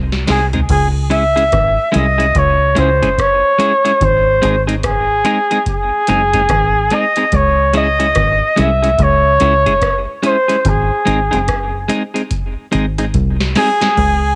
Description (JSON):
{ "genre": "roots reggae", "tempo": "72 BPM", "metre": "4/4", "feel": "swing 63% on 16ths", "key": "C# harmonic minor", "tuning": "A4 = 439 Hz", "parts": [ { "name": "deep dub fingered electric bass", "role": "bass", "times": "0.0-14.4 s", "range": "F#1 to C#2", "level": "-19 LUFS", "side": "equal", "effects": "none" }, { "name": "booming analog drum machine", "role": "drums", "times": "0.1-14.2 s", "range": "crash cymbal, hi-hat, kick drum, rim click, snare drum, toms", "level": "-23 LUFS", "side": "equal", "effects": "cassette tape" }, { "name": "warm flugelhorn", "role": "melody", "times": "0.3-14.4 s", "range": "G#4 to E5", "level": "-16 LUFS", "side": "equal", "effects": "cassette tape, tape echo" }, { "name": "clean electric guitar", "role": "accompaniment", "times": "0.3-13.9 s", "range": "G#3 to G#4", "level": "-22 LUFS", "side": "equal", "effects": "cassette tape, tape echo" } ], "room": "light reverb", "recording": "home recording on cassette", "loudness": "-14 LUFS", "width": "mono", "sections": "0.7-14.4 A section", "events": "drum fill 0.0-0.7, 13.1-14.0", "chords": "0.0 G#; 0.7 C#m; 4.0 G#; 7.3 C#m; 10.7 G#" }